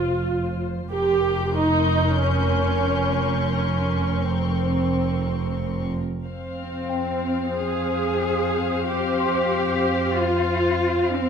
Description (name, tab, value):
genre	cinematic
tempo	91 BPM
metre	4/4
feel	straight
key	F minor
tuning	A4 = 442 Hz
part	muted studio violin section	melody	0.0-11.3 s	Bb4 to F5	-33 LUFS	left 6 dB	none
part	muted studio viola section	accompaniment	0.0-11.3 s	C4 to C5	-24 LUFS	equal	none
part	muted chamber double bass section	bass	0.0-11.3 s	F1 to F2	-28 LUFS	right 2 dB	none
part	muted studio cello section	bass	0.0-11.3 s	F2 to Ab4	-25 LUFS	right 1 dB	none
part	celesta	texture	0.0-0.9, 6.9-11.3 s	G5 to C6	-34 LUFS	left 8 dB	none
part	muted studio violin section	texture	0.9-5.9 s	C6 to G6	-34 LUFS	left 5 dB	none
room	moderate scoring stage reverb, RT60 1.5 s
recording	none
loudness	-20 LUFS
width	side -7 dB against mid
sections	0.0-6.2 A section; 6.2-11.3 A section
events	none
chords	0.0 F5; 0.9 Cm7/F; 6.2 Fm